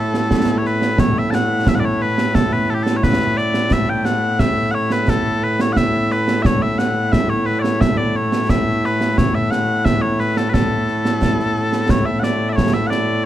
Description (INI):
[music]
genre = scottish traditional, Scottish pipe music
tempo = 88 BPM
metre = 2/4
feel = straight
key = A major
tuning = A4 = 440 Hz
[part]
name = mellow small bagpipes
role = melody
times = 0.0-13.3 s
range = A2 to A5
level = -18 LUFS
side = left 1 dB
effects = none
[part]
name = concert snare drum and concert bass drum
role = drums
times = 0.1-13.1 s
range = none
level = -19 LUFS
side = right 1 dB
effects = none
[sound]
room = light reverb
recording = none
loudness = -15 LUFS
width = side -12 dB against mid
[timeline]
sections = 1.0-11.9 A section; 11.9-13.3 B section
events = none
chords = none